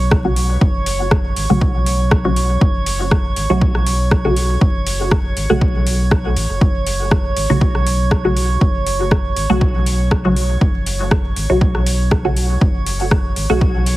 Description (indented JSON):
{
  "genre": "dub techno",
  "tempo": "120 BPM",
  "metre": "4/4",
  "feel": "swing 54% on 16ths",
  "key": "F# minor",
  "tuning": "A4 = 440 Hz",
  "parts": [
    { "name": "filtered dub chord stab", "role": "stabs", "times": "0.0-14.0 s", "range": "C#3 to F#4", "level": "-20 LUFS", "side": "equal", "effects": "phaser, sidechain pumping, dub echo" },
    { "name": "warm sub bass", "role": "bass", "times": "0.0-14.0 s", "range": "F#1 to B1", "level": "-19 LUFS", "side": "equal", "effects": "sidechain pumping" },
    { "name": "drifting glass-harmonics texture", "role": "texture", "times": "0.0-14.0 s", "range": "C#5", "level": "-25 LUFS", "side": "right 4 dB", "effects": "chorus, built-in reverb, sidechain pumping" },
    { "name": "deep house drum kit", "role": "drums", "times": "0.1-14.0 s", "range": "hi-hat, rim click", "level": "-23 LUFS", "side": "equal", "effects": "overdrive" },
    { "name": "electronic kick drum", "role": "drums", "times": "0.1-13.7 s", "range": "none", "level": "-16 LUFS", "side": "equal", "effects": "overdrive" }
  ],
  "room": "light reverb",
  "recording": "heavily compressed radio sound, multiband compression, vinyl crackle",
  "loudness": "-14 LUFS",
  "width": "side -17 dB against mid",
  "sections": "0.0-14.0 A section",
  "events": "filter sweep on synth stab 0.0-14.0",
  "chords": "0.0 F#m"
}